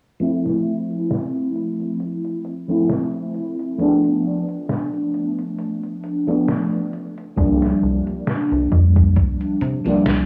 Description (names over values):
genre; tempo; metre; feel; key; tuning
vaporwave; 67 BPM; 4/4; swing 55% on 16ths; unclear; A4 = 441 Hz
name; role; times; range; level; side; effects
FM electric piano with soft pad layer; accompaniment; 0.2-10.3 s; F3 to E4; -22 LUFS; equal; tremolo, ensemble chorus, tape echo
detuned 8-bit digital drum machine; drums; 0.2-10.3 s; hi-hat, snare drum; -29 LUFS; equal; overdrive
slap-like FM bass; bass; 7.4-10.3 s; C2 to C3; -21 LUFS; equal; none
electronic kick drum; drums; 7.4-9.4 s; none; -20 LUFS; equal; overdrive
room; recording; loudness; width
light reverb, digital ambience; dry, gritty hardware recording, low-pass filter, small room ambience; -21 LUFS; mono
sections
0.2-10.3 A section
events
filter sweep 0.2-10.3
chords
0.2 Fmaj7; 3.8 Bm7b5/F; 6.9 Bb69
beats
| 0.21 1.11 2.00 2.90 | 3.79 4.69 5.58 6.48 | 7.38 8.27 9.17 10.06